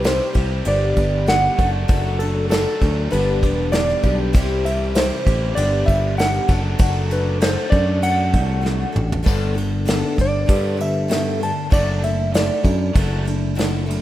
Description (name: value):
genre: folk rock and heartland rock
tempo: 98 BPM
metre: 4/4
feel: straight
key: G major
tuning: A4 = 440 Hz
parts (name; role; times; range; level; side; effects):
- clean lap steel guitar; melody; 0.0-12.9 s; A4 to A5; -22 LUFS; equal; tape echo
- picked twelve-string acoustic guitar; accompaniment; 0.0-14.0 s; G2 to A4; -27 LUFS; left 3 dB; none
- cranked stack guitar; riff; 0.0-14.0 s; G2 to A4; -28 LUFS; equal; overdrive
- picked electric bass; bass; 0.0-14.0 s; E1 to G2; -21 LUFS; equal; none
- soft brush drum kit; drums; 0.0-14.0 s; crash cymbal, kick drum, ride cymbal, snare drum, toms; -22 LUFS; equal; none
room: light reverb, small room ambience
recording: rough home demo mix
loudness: -16 LUFS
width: side -14 dB against mid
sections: 0.0-9.3 A section; 9.3-14.0 B section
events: drum fill 8.6-9.3; electric slide guitar solo 9.3-14.0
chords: 0.0 C; 0.7 G; 1.6 D/F#; 3.1 G; 4.3 C; 5.6 G; 6.5 D/F#; 9.3 Gadd9; 11.7 Dadd9/F#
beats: 0.05 0.66 1.28 | 1.89 2.50 3.12 3.73 | 4.34 4.96 5.57 6.18 | 6.80 7.41 8.03 8.64 | 9.26 9.87 10.49 11.10 | 11.72 12.34 12.96 13.57